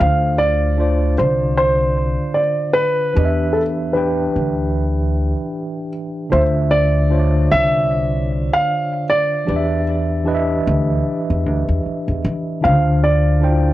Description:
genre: R&B, neo-soul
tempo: 76 BPM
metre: 4/4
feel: swing 58% on 16ths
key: D dorian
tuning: A4 = 440 Hz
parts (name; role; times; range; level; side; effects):
- dark baby grand piano; melody; 0.0-13.7 s; A4 to F5; -18 LUFS; right 1 dB; analog delay
- mellow tine electric piano; accompaniment; 0.0-13.7 s; D3 to G5; -21 LUFS; equal; medium stereo tremolo
- upright bass; bass; 0.0-13.7 s; C2 to E3; -18 LUFS; equal; none
room: light reverb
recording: worn, warbling old tape, cassette tape, warbly pitch drift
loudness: -15 LUFS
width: side -15 dB against mid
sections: 0.0-13.7 A section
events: none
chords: 0.0 Dm7; 3.2 Em7; 6.3 Dm9; 9.5 Em7; 12.6 Dm9

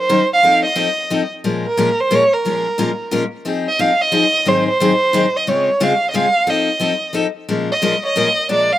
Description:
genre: jazz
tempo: 178 BPM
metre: 3/4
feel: swing 62% on 8ths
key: Bb minor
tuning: A4 = 442 Hz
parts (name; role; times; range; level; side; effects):
- warm violin; melody; 0.0-8.8 s; Bb4 to F5; -15 LUFS; right 2 dB; none
- picked steel-string acoustic guitar; accompaniment; 0.1-8.7 s; Ab2 to Bb4; -19 LUFS; left 3 dB; none
room: little or no reverb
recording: recorded outdoors, with no room sound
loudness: -14 LUFS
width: side -13 dB against mid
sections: 0.0-3.5 A section; 3.5-8.8 B section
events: none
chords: 0.4 F7; 1.4 Bbm7; 3.5 Fm7; 4.5 Ab7; 5.5 Dbmaj7; 6.5 F7; 7.5 Bbm7

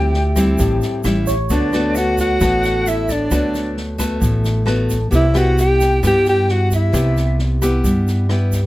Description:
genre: bossa nova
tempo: 132 BPM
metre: 4/4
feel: straight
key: D mixolydian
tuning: A4 = 440 Hz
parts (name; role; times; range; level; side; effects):
- breathy alto saxophone; melody; 0.0-7.4 s; D4 to G4; -18 LUFS; equal; none
- jazz flute; second line; 0.0-7.4 s; D5 to G5; -26 LUFS; left 1 dB; none
- barky tine electric piano; accompaniment; 0.0-1.7 s; G4 to E5; -28 LUFS; equal; lush chorus
- nylon-string guitar; accompaniment; 0.0-8.7 s; A2 to G4; -21 LUFS; left 1 dB; none
- upright bass; bass; 0.0-8.7 s; A1 to G2; -18 LUFS; equal; none
- open jazz drum kit; drums; 0.1-8.6 s; kick drum, rim click, snare drum; -25 LUFS; equal; none
- egg shaker; percussion; 0.4-8.7 s; none; -33 LUFS; right 5 dB; none
room: little or no reverb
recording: close, detailed microphones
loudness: -14 LUFS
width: side -16 dB against mid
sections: 0.0-1.5 A section; 1.5-8.7 B section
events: none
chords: 0.0 D9sus4; 1.0 A7; 1.5 D6; 5.1 Cmaj7

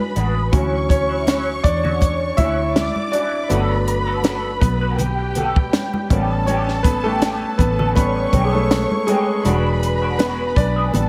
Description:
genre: lush 1970s-style soul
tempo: 81 BPM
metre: 4/4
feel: swing 54% on 16ths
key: D major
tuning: A4 = 440 Hz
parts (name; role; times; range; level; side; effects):
- dark studio string section; second line; 0.0-11.1 s; G4 to D6; -27 LUFS; equal; none
- clear baby grand piano; accompaniment; 0.0-11.1 s; E3 to E5; -24 LUFS; equal; none
- electric guitar through a small old amp; riff; 0.0-11.0 s; F#3 to B4; -30 LUFS; equal; wah
- vintage muted fingered electric bass; bass; 0.2-11.1 s; E1 to E2; -24 LUFS; equal; none
- compact cocktail drum kit; drums; 0.2-11.1 s; hi-hat, kick drum, snare drum; -22 LUFS; equal; none
- congas; percussion; 0.5-11.1 s; none; -30 LUFS; equal; none
room: light reverb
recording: none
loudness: -19 LUFS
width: mono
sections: 0.0-11.1 A section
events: grand piano solo 0.0-11.1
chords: 0.0 E9 (rootless); 0.5 Dmaj9; 3.5 Gmaj9; 6.1 A9; 9.4 E9

